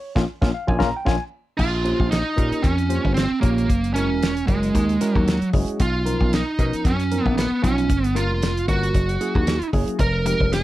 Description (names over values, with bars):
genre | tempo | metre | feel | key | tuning
electric jazz fusion | 114 BPM | 4/4 | swing 55% on 16ths | unclear | A4 = 440 Hz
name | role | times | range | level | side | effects
tine electric piano | accompaniment | 0.0-10.6 s | E#3 to Bb5 | -26 LUFS | left 2 dB | medium stereo tremolo
dry thumbed slap bass | bass | 0.2-10.6 s | Fb1 to B2 | -23 LUFS | equal | none
damped 70s drum kit | drums | 0.2-10.6 s | crash cymbal, hi-hat, kick drum, snare drum | -23 LUFS | equal | none
smooth overdriven lead guitar | melody | 1.6-10.6 s | Ab3 to Bb4 | -23 LUFS | right 3 dB | none
room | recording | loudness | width
light reverb | dark, warm production | -18 LUFS | side -15 dB against mid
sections
0.0-1.6 A section; 1.6-10.6 B section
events
band accent 0.0-1.6; drum fill 0.5-1.6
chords
0.0 Bbm7; 1.6 Bbm69; 3.7 Gb9; 5.8 Bmaj9#11; 7.9 Gm7b5; 8.9 Gb9; 10.0 Fm9